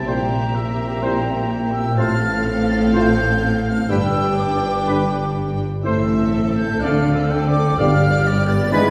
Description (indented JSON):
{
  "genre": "classical, dramatic, fast romantic movement for symphony orchestra",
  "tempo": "125 BPM",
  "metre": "4/4",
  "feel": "straight",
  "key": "unclear",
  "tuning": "A4 = 441 Hz",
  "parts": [
    { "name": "rich studio violin section", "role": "melody", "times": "0.0-8.9 s", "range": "D5 to G5", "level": "-34 LUFS", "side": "equal", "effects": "none" },
    { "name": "rich studio violin section", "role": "second line", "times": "0.0-8.9 s", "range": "E4 to B4", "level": "-33 LUFS", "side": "equal", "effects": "none" },
    { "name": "warm oboe", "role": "second line", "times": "0.0-8.9 s", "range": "D5 to B5", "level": "-29 LUFS", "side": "equal", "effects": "none" },
    { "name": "rich symphonic viola section", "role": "accompaniment", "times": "0.0-8.9 s", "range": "B3 to D4", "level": "-32 LUFS", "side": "equal", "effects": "none" },
    { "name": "concert harp", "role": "arpeggios", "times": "0.0-8.9 s", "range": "G2 to G5", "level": "-29 LUFS", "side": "equal", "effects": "none" },
    { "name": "clear symphonic double bass section", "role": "bass", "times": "0.0-8.9 s", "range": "G1 to D2", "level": "-26 LUFS", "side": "equal", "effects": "none" },
    { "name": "rich studio cello section", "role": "bass", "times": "0.0-8.9 s", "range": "G2 to D3", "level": "-25 LUFS", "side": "equal", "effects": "none" },
    { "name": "bright flute section", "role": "second line", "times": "0.1-8.9 s", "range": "Bb5 to A6", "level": "-29 LUFS", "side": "equal", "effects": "none" },
    { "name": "dark French horn section", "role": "sustained chords", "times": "0.1-8.9 s", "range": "B3 to G4", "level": "-31 LUFS", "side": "equal", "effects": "none" },
    { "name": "mellow trombone section", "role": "sustained chords", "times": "0.1-8.9 s", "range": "A2 to A3", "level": "-29 LUFS", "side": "equal", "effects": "none" },
    { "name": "warm trumpet section", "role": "stabs", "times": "0.1-8.9 s", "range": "B4 to D5", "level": "-30 LUFS", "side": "equal", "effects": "none" },
    { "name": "timpani", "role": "percussion", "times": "7.8-8.5 s", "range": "G2", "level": "-26 LUFS", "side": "equal", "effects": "none" }
  ],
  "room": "wet scoring stage reverb, RT60 1.5 s",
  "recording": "heard from further back in the room",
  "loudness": "-19 LUFS",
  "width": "mono",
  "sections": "0.0-8.9 A section",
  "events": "none",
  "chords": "0.1 C7/Bb; 2.0 F/A; 3.9 G; 5.9 Am; 6.8 Dm7; 7.8 G7",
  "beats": "| 0.07 0.55 1.03 1.51 | 1.98 2.46 2.94 3.42 | 3.90 4.39 4.88 5.37 | 5.86 6.34 6.82 7.30 | 7.78 8.26 8.74"
}